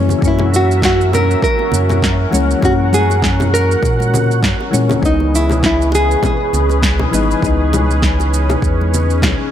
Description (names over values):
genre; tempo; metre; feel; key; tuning
sunset chillout; 100 BPM; 4/4; swing 55% on 16ths; C# dorian; A4 = 440 Hz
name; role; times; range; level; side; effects
soft electric-piano-like synth keys; accompaniment; 0.0-9.5 s; E3 to D#5; -21 LUFS; moving between left 7 dB and right 7 dB; chorus, auto-pan, tape echo
lush unison pad; sustained chords; 0.0-9.5 s; C#4 to F#5; -21 LUFS; equal; chorus, phaser
warm sub bass; bass; 0.0-9.3 s; G#1 to A#2; -16 LUFS; equal; none
electronic shaker, congas and snare drum; drums; 0.1-9.4 s; none; -20 LUFS; left 1 dB; overdrive
congas and bongos; percussion; 0.1-9.4 s; none; -25 LUFS; right 2 dB; none
electronic kick drum; drums; 0.2-9.4 s; none; -19 LUFS; equal; overdrive
nylon-string guitar; melody; 0.3-7.1 s; D#4 to A#4; -17 LUFS; equal; tape echo
room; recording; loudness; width
light reverb, digital ambience; none; -12 LUFS; side -10 dB against mid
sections
0.0-9.5 A section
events
none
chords
0.0 F#7; 5.0 C#m7